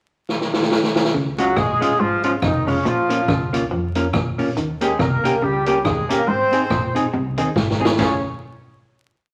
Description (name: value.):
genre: ska.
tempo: 140 BPM.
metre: 4/4.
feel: swing 58% on 8ths.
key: Db major.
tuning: A4 = 440 Hz.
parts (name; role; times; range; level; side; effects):
street-band drum kit; drums; 0.3-8.1 s; hi-hat, kick drum, ride cymbal, rim click, snare drum; -24 LUFS; equal; none.
electric guitar at the edge of break-up; riff; 1.1-7.7 s; F2 to F3; -28 LUFS; equal; none.
upright bass; bass; 1.1-8.2 s; F1 to F2; -32 LUFS; equal; none.
warm horn section; melody; 1.4-8.2 s; Db3 to Db5; -23 LUFS; equal; none.
hollow-body jazz guitar; accompaniment; 1.4-8.1 s; Ab3 to Ab4; -25 LUFS; equal; none.
room: wet large studio reverb, RT60 1.1 s.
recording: vinyl crackle.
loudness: -20 LUFS.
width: mono.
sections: 0.0-1.1 pickup bar; 1.1-8.0 head; 8.0-9.3 final chord.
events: drum fill 0.3-1.1, 7.6-8.0.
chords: 0.0 N.C.; 1.1 Db; 2.9 Bbm; 4.6 Eb7; 6.3 Ab; 8.0 Db.